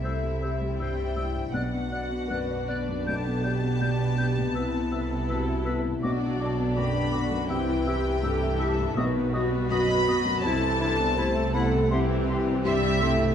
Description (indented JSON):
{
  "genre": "cinematic",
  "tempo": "81 BPM",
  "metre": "4/4",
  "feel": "rubato",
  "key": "unclear",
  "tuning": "A4 = 440 Hz",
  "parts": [
    { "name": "dark studio violin section", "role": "second line", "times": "0.0-13.3 s", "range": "E4 to E5", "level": "-36 LUFS", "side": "left 4 dB", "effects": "none" },
    { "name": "silver concert flute", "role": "second line", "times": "0.0-13.1 s", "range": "B5 to G6", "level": "-38 LUFS", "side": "left 2 dB", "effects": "none" },
    { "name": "warm clarinet", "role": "second line", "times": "0.0-13.2 s", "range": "E4 to D5", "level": "-36 LUFS", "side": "left 3 dB", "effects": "none" },
    { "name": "felt-muted upright piano", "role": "accompaniment", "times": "0.0-13.3 s", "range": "B1 to E5", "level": "-31 LUFS", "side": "left 2 dB", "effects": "none" },
    { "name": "warm studio viola section", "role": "accompaniment", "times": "0.0-13.3 s", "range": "D3 to F#4", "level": "-33 LUFS", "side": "right 1 dB", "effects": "none" },
    { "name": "mellow French horn section", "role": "sustained chords", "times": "0.0-13.3 s", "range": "D4 to C5", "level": "-32 LUFS", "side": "left 3 dB", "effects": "none" },
    { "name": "dark studio cello section", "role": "bass", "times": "0.0-13.3 s", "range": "B2 to C3", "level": "-33 LUFS", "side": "right 4 dB", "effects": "none" },
    { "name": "warm studio double bass section", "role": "bass", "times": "0.0-13.3 s", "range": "B1 to C2", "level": "-30 LUFS", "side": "right 2 dB", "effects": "none" },
    { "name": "rich studio violin section", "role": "melody", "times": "0.8-13.3 s", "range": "D5 to B5", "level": "-32 LUFS", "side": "left 2 dB", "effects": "none" }
  ],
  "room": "moderate scoring stage reverb, RT60 1.7 s",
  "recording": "dark, warm production",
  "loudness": "-24 LUFS",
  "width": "side -8 dB against mid",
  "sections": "0.0-13.3 A section",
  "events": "none",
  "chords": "0.1 C; 1.5 Bm; 3.1 Gadd9/B; 4.6 Amadd9/C; 6.0 Bm; 7.5 C; 9.0 B; 10.4 Amadd9/C; 11.9 C"
}